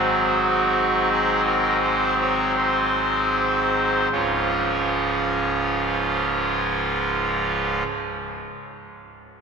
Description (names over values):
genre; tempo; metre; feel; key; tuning
classical, chorale-style piece for pipe organ; 38-45 BPM; 4/4; rubato; Db major; A4 = 440 Hz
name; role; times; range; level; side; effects
pipe organ, trumpet; solo; 0.0-7.8 s; Db1 to Db5; -20 LUFS; right 1 dB; none
room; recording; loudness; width
wet cathedral reverb, RT60 4.8 s; minimal, uncompressed stereo recording; -19 LUFS; side -5 dB against mid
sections
0.0-4.1 A section; 4.1-9.4 B section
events
slowing down 0.0-4.1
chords
0.0 Ab7; 4.1 Db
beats
1.12 2.57 | 4.12 5.65 7.20